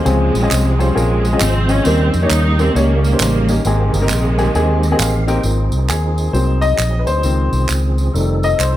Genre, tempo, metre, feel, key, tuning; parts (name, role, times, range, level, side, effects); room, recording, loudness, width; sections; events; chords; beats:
uptempo gospel; 134 BPM; 4/4; swing 64% on 8ths; Ab major; A4 = 440 Hz
warm symphonic string section; melody; 0.0-5.3 s; C3 to Eb4; -19 LUFS; right 1 dB
warm upright piano; accompaniment; 0.0-8.8 s; Ab2 to G5; -19 LUFS; left 3 dB
tonewheel organ; sustained chords; 0.0-8.8 s; Db3 to G5; -24 LUFS; right 3 dB; slow rotary speaker, overdrive, chorus vibrato
fingered electric bass; bass; 0.1-8.8 s; F1 to F2; -16 LUFS; equal
tambourine and handclaps; percussion; 0.1-8.7 s; -24 LUFS; right 4 dB
light reverb; -13 LUFS; side -13 dB against mid
0.0-5.4 A section; 5.4-8.8 B section
tonewheel organ fill 4.5-5.4; upright piano fill 4.8-5.4; upright piano solo 5.4-8.8
0.1 Dbmaj7; 1.9 Eb7; 3.6 Abmaj9; 5.4 Ab6; 6.3 Ab7/C; 7.2 Dbmaj7; 8.1 F7
| 0.06 0.51 0.96 1.41 | 1.85 2.30 2.75 3.20 | 3.65 4.10 4.54 4.99 | 5.44 5.89 6.34 6.79 | 7.24 7.70 8.15 8.60